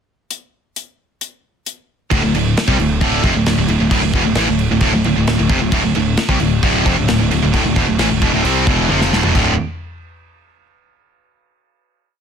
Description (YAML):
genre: heavy metal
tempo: 133 BPM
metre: 4/4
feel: straight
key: D minor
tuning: A4 = 440 Hz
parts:
  - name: modern studio drum kit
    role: drums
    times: 0.3-9.5 s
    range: crash cymbal, hi-hat, kick drum, snare drum, toms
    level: -19 LUFS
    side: equal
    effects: none
  - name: distorted electric guitar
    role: riff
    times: 2.1-9.5 s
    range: D2 to C4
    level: -20 LUFS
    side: left 11 dB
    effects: overdrive
  - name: distorted electric guitar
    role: riff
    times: 2.1-9.5 s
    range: D2 to F4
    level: -21 LUFS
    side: equal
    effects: overdrive
  - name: high-gain distorted guitar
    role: riff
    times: 2.1-9.5 s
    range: D2 to C4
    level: -19 LUFS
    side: right 12 dB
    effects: distortion
  - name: fuzz picked electric bass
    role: bass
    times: 2.1-9.6 s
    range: D1 to C2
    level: -20 LUFS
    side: equal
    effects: overdrive
room: light reverb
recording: dense, heavily limited modern master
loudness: -13 LUFS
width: side -7 dB against mid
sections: 0.3-2.1 pickup bar; 2.1-9.3 riff; 9.3-11.2 final chord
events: drum fill 8.9-9.3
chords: 0.3 N.C.; 2.1 Dm; 9.3 D5